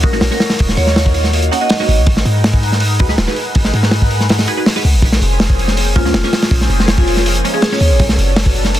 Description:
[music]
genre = drum and bass, jungle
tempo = 162 BPM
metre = 4/4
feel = straight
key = Eb minor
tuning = A4 = 440 Hz
[part]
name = vibraphone with medium hard mallets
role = melody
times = 0.0-2.0, 6.0-8.0 s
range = F4 to Gb5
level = -20 LUFS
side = right 1 dB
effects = dub echo
[part]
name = filtered dub chord stab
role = stabs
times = 0.0-7.8 s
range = F3 to Cb5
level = -23 LUFS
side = right 2 dB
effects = phaser, analog chorus, dub echo
[part]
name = warm 808-style bass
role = bass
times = 0.0-8.8 s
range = Eb1 to Ab2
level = -15 LUFS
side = equal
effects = none
[part]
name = crunchy breakbeat drum kit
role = drums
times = 0.0-8.8 s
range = hi-hat, kick drum, snare drum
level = -14 LUFS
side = equal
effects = none
[sound]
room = light reverb, small room ambience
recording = dense, heavily limited modern master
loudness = -11 LUFS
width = side -13 dB against mid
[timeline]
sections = 0.0-8.8 A section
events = none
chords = 0.0 Ebm7; 2.1 Abm7; 5.0 Bbm7; 8.0 Bm7

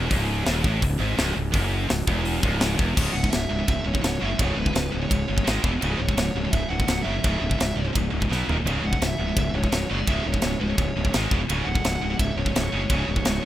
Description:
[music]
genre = heavy metal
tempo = 169 BPM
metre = 4/4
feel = straight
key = C# minor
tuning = A4 = 440 Hz
[part]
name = heavy high-gain guitar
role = riff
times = 0.0-13.5 s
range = C#2 to B3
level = -29 LUFS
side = right 9 dB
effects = distortion
[part]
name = scooped high-gain guitar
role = riff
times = 0.0-13.5 s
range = C#2 to B3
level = -30 LUFS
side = left 9 dB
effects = distortion
[part]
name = fuzz fingered electric bass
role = bass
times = 0.0-13.4 s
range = C#1 to B1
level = -26 LUFS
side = equal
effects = overdrive
[part]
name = tight metal drum kit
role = drums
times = 0.1-13.3 s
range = crash cymbal, hi-hat, kick drum, ride cymbal, snare drum, toms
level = -26 LUFS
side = equal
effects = none
[part]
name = high-gain lead guitar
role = melody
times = 3.1-13.5 s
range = B4 to F#5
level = -32 LUFS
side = right 1 dB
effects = distortion
[sound]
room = small room ambience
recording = rough home demo mix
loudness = -21 LUFS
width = side -13 dB against mid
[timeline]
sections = 0.0-3.0 A section; 3.0-13.5 B section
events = drum fill 8.3-8.7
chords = 0.0 C#m; 5.5 G#5; 5.6 E5; 5.8 C#m; 8.3 B5; 8.5 D#5; 8.7 C#m; 11.1 G#5; 11.3 E5; 11.5 C#5

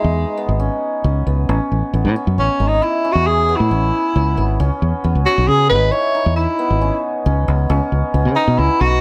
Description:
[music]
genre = progressive instrumental, band music in an uneven meter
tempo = 135 BPM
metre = 7/4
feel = straight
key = C# minor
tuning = A4 = 441 Hz
[part]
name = warm tenor saxophone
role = melody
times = 0.0-9.0 s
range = G#3 to C#5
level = -19 LUFS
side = equal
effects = plate reverb
[part]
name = hammered dulcimer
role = arpeggios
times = 0.0-9.0 s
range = B3 to G#4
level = -25 LUFS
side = equal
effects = plate reverb
[part]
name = fingered electric bass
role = bass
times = 0.0-9.0 s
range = G#1 to C#3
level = -19 LUFS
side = equal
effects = none
[sound]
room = moderate studio reverb, RT60 0.7 s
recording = none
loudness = -17 LUFS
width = mono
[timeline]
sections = 0.0-9.0 A section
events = tenor saxophone solo 0.0-9.0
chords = 0.0 C#m9; 1.5 Amaj9; 4.6 C#m9

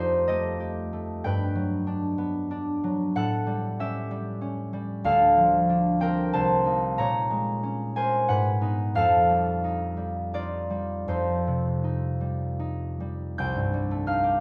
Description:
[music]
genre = classical, solo harp piece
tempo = 70-97 BPM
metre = 3/4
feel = rubato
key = unclear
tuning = A4 = 440 Hz
[part]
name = concert harp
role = solo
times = 0.0-14.4 s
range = C2 to G6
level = -26 LUFS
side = equal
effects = none
[sound]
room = moderate recital hall reverb, RT60 1.3 s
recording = none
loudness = -26 LUFS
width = mono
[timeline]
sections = 0.0-13.4 A section; 13.4-14.4 B section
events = none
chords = 0.0 F9; 1.2 Gmaj7; 3.2 A9; 5.0 Dm7; 6.3 Cm7; 7.0 Bbm7; 8.3 Abm7; 8.9 F9; 13.4 Cm6

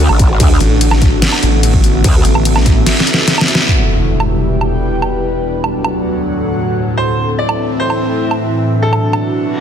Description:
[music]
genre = heavy wobble dubstep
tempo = 146 BPM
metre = 4/4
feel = half-time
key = E minor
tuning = A4 = 439 Hz
[part]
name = evolving wavetable pad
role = sustained chords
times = 0.0-9.6 s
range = D2 to F#4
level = -18 LUFS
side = equal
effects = phaser, built-in reverb, sidechain pumping
[part]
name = growl bass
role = bass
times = 0.0-2.2 s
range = A1 to D2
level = -12 LUFS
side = equal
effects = chorus, overdrive
[part]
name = airy breathy pad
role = texture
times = 0.0-9.6 s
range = C4 to G5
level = -19 LUFS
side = equal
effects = chorus, sidechain pumping
[part]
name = dubstep drum kit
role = drums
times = 0.1-9.2 s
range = crash cymbal, hi-hat, snare drum, woodblock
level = -16 LUFS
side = right 1 dB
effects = none
[part]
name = electronic kick drum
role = drums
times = 0.2-2.7 s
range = none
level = -12 LUFS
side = equal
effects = none
[part]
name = snarling distorted saw bass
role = bass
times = 0.6-2.8 s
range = A1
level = -12 LUFS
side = equal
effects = distortion, overdrive
[part]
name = impact and reverse cymbal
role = sound effects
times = 3.7-5.3, 9.5-9.6 s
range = none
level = -16 LUFS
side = equal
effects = none
[part]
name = bright baby grand piano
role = melody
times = 7.0-9.6 s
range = A4 to D5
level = -19 LUFS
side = equal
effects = vintage 12-bit sampler grit, ping-pong delay
[sound]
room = moderate lush hall reverb, RT60 1.7 s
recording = dense, heavily limited modern master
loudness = -11 LUFS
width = side -8 dB against mid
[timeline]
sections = 0.0-3.7 A section; 3.7-9.6 B section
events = drop 0.0-3.7; drum fill 2.9-3.7; band accent 3.5; impact 3.7-5.3; reverse cymbal 9.5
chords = 0.0 D; 3.7 Em; 5.3 D; 7.0 Am; 8.6 Bm

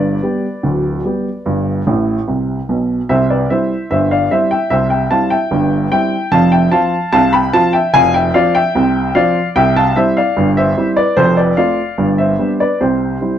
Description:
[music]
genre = ragtime piano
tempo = 74 BPM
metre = 2/4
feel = straight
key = C major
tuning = A4 = 439 Hz
[part]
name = warm upright piano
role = solo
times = 0.0-13.4 s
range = D1 to B5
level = -12 LUFS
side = equal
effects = none
[sound]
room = moderate studio reverb, RT60 0.6 s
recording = dark, warm production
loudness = -12 LUFS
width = side -10 dB against mid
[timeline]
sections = 0.0-13.4 A section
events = upright piano fill 1.9-3.1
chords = 0.0 G; 3.1 C; 6.3 F5; 9.6 C; 11.2 F; 12.0 G; 12.8 C

